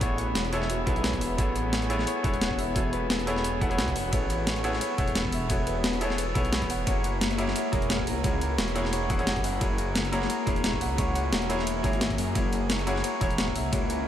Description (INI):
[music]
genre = liquid drum and bass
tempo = 175 BPM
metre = 4/4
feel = swing 54% on 16ths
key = unclear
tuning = A4 = 439 Hz
[part]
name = clear grand piano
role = accompaniment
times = 0.0-14.1 s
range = A#3 to F#5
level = -30 LUFS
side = equal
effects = diffuse ambient delay
[part]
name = Celtic harp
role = arpeggios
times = 0.0-14.1 s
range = A#3 to B5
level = -33 LUFS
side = left 2 dB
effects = diffuse ambient delay
[part]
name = swelling detuned saw bass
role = bass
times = 0.0-14.1 s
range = E1 to F#2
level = -31 LUFS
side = equal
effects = none
[part]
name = breakbeat sampler-style drum kit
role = drums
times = 0.0-14.0 s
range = hi-hat, ride cymbal, snare drum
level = -31 LUFS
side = equal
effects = overdrive
[part]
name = electronic kick drum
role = drums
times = 0.0-13.8 s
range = none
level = -30 LUFS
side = equal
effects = overdrive
[sound]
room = moderate huge ambient reverb, RT60 4.8 s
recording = dreamy mix soaked in reverb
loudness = -24 LUFS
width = side -10 dB against mid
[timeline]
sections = 0.0-14.1 A section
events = none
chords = 0.0 Amaj9; 6.9 F#9